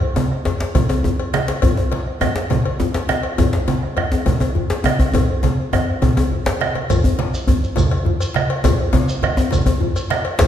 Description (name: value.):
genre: west african traditional, West African drum ensemble.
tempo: 137 BPM (dotted quarters).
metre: 12/8.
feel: straight.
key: none.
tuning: none.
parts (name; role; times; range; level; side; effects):
congas; percussion; 0.0-10.5 s; none; -23 LUFS; right 4 dB; none.
cowbell; percussion; 0.2-10.5 s; none; -27 LUFS; left 5 dB; none.
djembe; percussion; 0.2-10.5 s; none; -24 LUFS; left 3 dB; none.
djembe; percussion; 0.2-10.5 s; none; -20 LUFS; left 1 dB; none.
bombo; percussion; 0.3-10.5 s; none; -22 LUFS; right 2 dB; none.
shekere; percussion; 6.9-10.5 s; none; -27 LUFS; right 1 dB; none.
room: wet recital hall reverb, RT60 1.4 s.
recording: recorded in a church or concert hall.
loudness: -16 LUFS.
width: side -10 dB against mid.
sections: 0.0-6.9 A section; 6.9-10.5 B section.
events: drum fill 5.1-6.9.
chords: none.